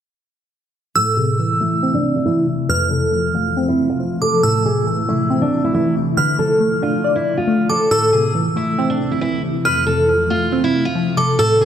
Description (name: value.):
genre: hip hop.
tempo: 138 BPM.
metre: 4/4.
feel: half-time.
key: A minor.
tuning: A4 = 441 Hz.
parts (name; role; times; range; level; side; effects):
picked steel-string acoustic guitar; melody; 1.0-11.7 s; D4 to B4; -19 LUFS; equal; low-pass filter.
glassy synth bell; second line; 1.0-11.7 s; D6 to F6; -22 LUFS; right 2 dB; chorus, phaser, ping-pong delay.
glassy wavetable pluck; accompaniment; 1.0-11.7 s; F2 to D5; -19 LUFS; equal; chorus, low-pass filter.
granular cloud pad; sustained chords; 1.7-11.7 s; C3 to F4; -25 LUFS; equal; built-in reverb, low-pass filter.
riser; sound effects; 11.4-11.7 s; none; barely audible; none; none.
room: light reverb.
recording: none.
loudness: -15 LUFS.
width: side -9 dB against mid.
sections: 1.0-11.7 A section.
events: filter sweep 1.0-11.7.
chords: 1.0 Am; 2.7 F; 4.4 Am; 6.2 Dm; 7.9 Am; 9.7 F.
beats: | 0.96 1.39 1.82 2.26 | 2.69 3.13 3.56 4.00 | 4.43 4.87 5.30 5.74 | 6.17 6.61 7.04 7.48 | 7.91 8.35 8.78 9.22 | 9.65 10.09 10.52 10.96 | 11.39.